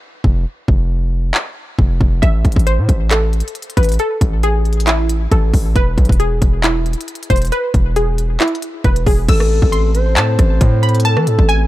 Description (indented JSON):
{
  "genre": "hip hop, trap",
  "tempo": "136 BPM",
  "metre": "4/4",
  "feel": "half-time",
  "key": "A harmonic minor",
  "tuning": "A4 = 439 Hz",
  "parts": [
    { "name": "hard-hitting 808-style bass", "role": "bass", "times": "0.2-11.7 s", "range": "E1 to E3", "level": "-15 LUFS", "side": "equal", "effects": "none" },
    { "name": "trap drum kit", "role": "drums", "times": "0.2-11.6 s", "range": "crash cymbal, handclaps, hi-hat, kick drum, rim click", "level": "-15 LUFS", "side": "equal", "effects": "none" },
    { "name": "glassy wavetable pluck", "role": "melody", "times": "2.2-11.7 s", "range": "E4 to E6", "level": "-20 LUFS", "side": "equal", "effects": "chorus, ping-pong delay" },
    { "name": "gliding portamento lead", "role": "second line", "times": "9.3-11.7 s", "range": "A4 to C5", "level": "-20 LUFS", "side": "equal", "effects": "chorus, phaser, ping-pong delay" },
    { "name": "glass harmonica", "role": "sustained chords", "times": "9.3-11.7 s", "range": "A3 to A4", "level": "-25 LUFS", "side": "left 4 dB", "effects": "none" }
  ],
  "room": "little or no reverb",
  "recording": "dark, warm production",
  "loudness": "-13 LUFS",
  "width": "side -16 dB against mid",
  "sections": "0.0-9.3 A section; 9.3-11.7 B section",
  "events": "break 0.0-2.2",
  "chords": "0.0 F5; 2.2 A5; 5.8 E; 9.3 Am"
}